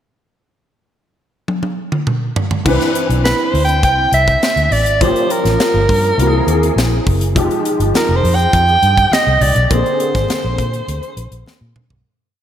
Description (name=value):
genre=polished 1980s jazz-funk pop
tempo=102 BPM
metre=4/4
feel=straight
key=unclear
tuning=A4 = 440 Hz
part: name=crisp fusion drum kit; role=drums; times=1.5-12.0 s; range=crash cymbal, hi-hat, kick drum, snare drum, toms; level=-19 LUFS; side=equal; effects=none
part: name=warm concert grand piano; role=accompaniment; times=2.6-12.1 s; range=D3 to B4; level=-19 LUFS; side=left 1 dB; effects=ensemble chorus
part: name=vintage muted fingered electric bass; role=bass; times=2.7-12.0 s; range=F1 to Bb2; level=-16 LUFS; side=equal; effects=none
part: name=breathy soprano saxophone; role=melody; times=3.2-11.5 s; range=Bb4 to G5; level=-15 LUFS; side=right 2 dB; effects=none
part: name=congas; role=percussion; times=7.5-12.0 s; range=none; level=-29 LUFS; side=right 2 dB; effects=none
room=wet lush hall reverb, RT60 2.0 s, studio reverb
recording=dreamy mix soaked in reverb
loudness=-12 LUFS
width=side -10 dB against mid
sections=0.3-2.7 pickup bar; 2.7-12.1 verse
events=drum fill 1.5-2.7, 11.5-12.1; fade-out 9.7-12.1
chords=0.3 N.C.; 2.7 Cmaj9; 5.0 Gm7b5; 6.2 C7alt; 7.4 Fm9; 9.7 Bb9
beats=| 0.30 0.89 1.48 2.07 | 2.66 3.25 3.84 4.42 | 5.01 5.60 6.19 6.77 | 7.36 7.95 8.53 9.12 | 9.71 10.29 10.88 11.47